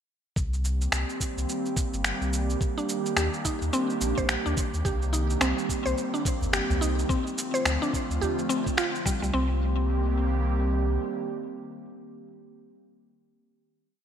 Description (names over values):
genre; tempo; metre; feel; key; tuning
organic downtempo; 107 BPM; 4/4; swing 60% on 16ths; C dorian; A4 = 438 Hz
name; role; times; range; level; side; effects
airy breathy pad; sustained chords; 0.7-12.3 s; D3 to G4; -31 LUFS; right 1 dB; chorus, sidechain pumping
warm sub bass; bass; 0.4-11.0 s; G1 to Eb2; -27 LUFS; equal; tube saturation, sidechain pumping
electronic cabasa and finger snaps; drums; 0.4-9.3 s; none; -30 LUFS; equal; studio reverb, gated reverb
electronic kick drum; drums; 0.4-9.2 s; none; -29 LUFS; equal; studio reverb
mallet-like synth pluck; arpeggios; 2.8-9.6 s; G3 to C5; -30 LUFS; equal; chorus, cassette tape, digital delay
udu; percussion; 6.4-8.4 s; none; -33 LUFS; right 1 dB; none
room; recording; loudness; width
moderate plate reverb, RT60 2.6 s; bright 1980s-style digital production; -24 LUFS; side -9 dB against mid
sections
0.4-9.3 groove; 9.3-11.6 final chord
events
none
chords
0.4 Cm7; 2.6 Ebmaj7; 4.8 Cm7; 7.1 Dm7; 9.3 Cm7